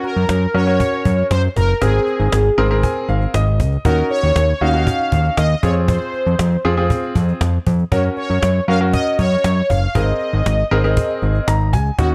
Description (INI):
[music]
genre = synth-pop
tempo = 118 BPM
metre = 4/4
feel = straight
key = Ab mixolydian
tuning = A4 = 440 Hz
[part]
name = analog synth brass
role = melody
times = 0.0-12.1 s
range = Gb4 to F5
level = -22 LUFS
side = equal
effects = chorus
[part]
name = bright concert grand piano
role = accompaniment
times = 0.0-12.1 s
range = C4 to C6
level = -24 LUFS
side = equal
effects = none
[part]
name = cajon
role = drums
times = 0.0-12.1 s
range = none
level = -24 LUFS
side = equal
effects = none
[part]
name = fat analog bass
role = bass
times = 0.2-12.1 s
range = Gb1 to Gb2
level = -19 LUFS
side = equal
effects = none
[sound]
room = light reverb, studio reverb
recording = dark, warm production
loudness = -17 LUFS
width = mono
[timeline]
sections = 0.0-12.1 A section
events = grand piano fill 2.3-3.9, 11.2-12.0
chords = 0.0 Gb; 1.8 Abadd9; 3.9 Ebm7; 5.6 Fm; 7.9 Gb; 10.0 Abadd9